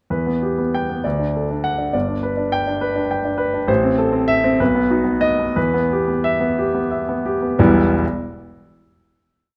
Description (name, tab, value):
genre	classical, romantic character piece for solo piano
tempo	58-70 BPM (dotted quarters)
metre	6/8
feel	rubato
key	E minor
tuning	A4 = 440 Hz
part	warm grand piano	solo	0.1-8.1 s	E1 to G5	-19 LUFS	equal	none
room	moderate recital hall reverb, RT60 1.3 s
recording	close, detailed microphones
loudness	-19 LUFS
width	mono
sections	0.1-7.6 A section; 7.6-9.5 final chord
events	slowing down 2.8-7.6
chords	0.1 Em; 1.0 D; 1.9 G; 3.7 Am; 4.6 B; 5.6 Em